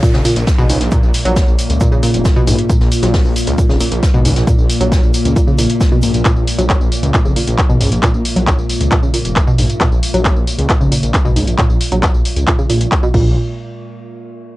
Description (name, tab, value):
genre	driving peak-time techno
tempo	135 BPM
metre	4/4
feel	straight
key	Bb minor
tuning	A4 = 440 Hz
part	analog pluck	riff	0.0-13.3 s	Ab2 to Gb3	-17 LUFS	equal	chorus, tube saturation, sidechain pumping, cassette tape, analog delay
part	metallic inharmonic drone	drone	0.0-13.4 s	Bb2	-22 LUFS	left 1 dB	chorus, built-in reverb, sidechain pumping, cassette tape
part	electronic kick drum	drums	0.0-13.2 s	none	-14 LUFS	equal	overdrive, cassette tape
part	jazz brush drum kit	drums	0.0-6.1 s	hi-hat, shaker, snare drum	-29 LUFS	equal	high-pass filter on hats, cassette tape, high-pass filter on snare, high-pass filter on perc, high-pass filter on room
part	techno drum kit	drums	0.0-13.2 s	crash cymbal, handclaps, hi-hat, tambourine	-20 LUFS	equal	cassette tape, sidechain pumping on hats, sidechain pumping on cymbals, sidechain pumping on perc
part	downlifter	sound effects	0.0-2.7 s	none	-34 LUFS	right 1 dB	none
part	detuned saw bass	bass	0.1-13.3 s	F1 to Db2	-18 LUFS	equal	sidechain pumping
room	light reverb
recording	home recording on cassette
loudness	-11 LUFS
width	side -18 dB against mid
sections	0.0-13.4 A section; 13.4-14.6 B section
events	filter sweep on detuned saw bass 0.0-13.4; filter sweep on synth arpeggio sound 0.0-13.4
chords	0.0 Bbm; 13.1 N.C.